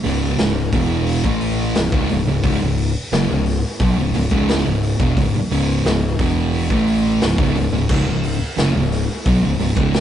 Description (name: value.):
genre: stoner and doom metal.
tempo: 88 BPM.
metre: 4/4.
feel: straight.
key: C# minor.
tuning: A4 = 440 Hz.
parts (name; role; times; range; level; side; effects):
thick fuzz guitar; riff; 0.0-10.0 s; C#2 to A3; -20 LUFS; right 4 dB; distortion.
raw garage drum kit; drums; 0.0-10.0 s; crash cymbal, hi-hat, kick drum, snare drum; -22 LUFS; equal; none.
thick fuzz guitar; riff; 0.1-10.0 s; C#2 to A3; -22 LUFS; left 5 dB; distortion.
growling fingered electric bass; bass; 0.1-10.0 s; C#1 to B1; -23 LUFS; equal; overdrive, tube saturation.
room: light reverb.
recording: rough rehearsal-room recording, tube saturation, nothing above 10.9 kHz.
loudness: -16 LUFS.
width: side -10 dB against mid.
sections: 0.0-10.0 A section.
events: none.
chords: 0.0 C#m.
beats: 0.39 1.07 1.76 | 2.44 3.12 3.81 4.49 | 5.17 5.85 6.54 7.22 | 7.90 8.58 9.26 9.95.